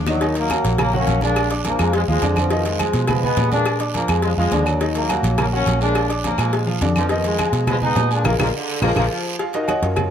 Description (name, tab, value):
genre	latin, salsa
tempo	209 BPM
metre	4/4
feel	straight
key	Eb harmonic minor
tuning	A4 = 440 Hz
part	mellow saxophone section	second line	0.0-0.2, 8.4-9.4 s	Bb2 to D4	-30 LUFS	equal	none
part	warm grand piano	accompaniment	0.0-10.1 s	D3 to D6	-24 LUFS	left 1 dB	none
part	vintage muted fingered electric bass	bass	0.0-10.1 s	Bb1 to Cb3	-21 LUFS	equal	none
part	mellow trombone section	melody	0.1-9.0 s	Cb3 to Eb4	-23 LUFS	left 1 dB	none
part	bongos and cowbell	percussion	0.1-10.1 s	none	-29 LUFS	left 5 dB	none
part	claves	percussion	0.1-10.1 s	none	-30 LUFS	left 7 dB	none
part	guiro	percussion	0.1-9.0 s	none	-33 LUFS	right 9 dB	none
part	timbales and agogo bells	percussion	0.1-10.1 s	none	-28 LUFS	right 7 dB	none
part	congas	percussion	0.2-10.1 s	none	-28 LUFS	equal	none
room	light reverb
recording	none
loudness	-17 LUFS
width	side -9 dB against mid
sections	0.2-9.4 A section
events	drum fill 0.0, 8.8-9.4; band accent 8.2-9.4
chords	0.2 Ebm7; 1.4 Bb7; 2.5 Fm7b5; 3.7 Bb7; 4.8 Ebm7; 6.0 Bb7; 7.1 Fm7b5; 8.2 Bb7; 9.4 Ebm7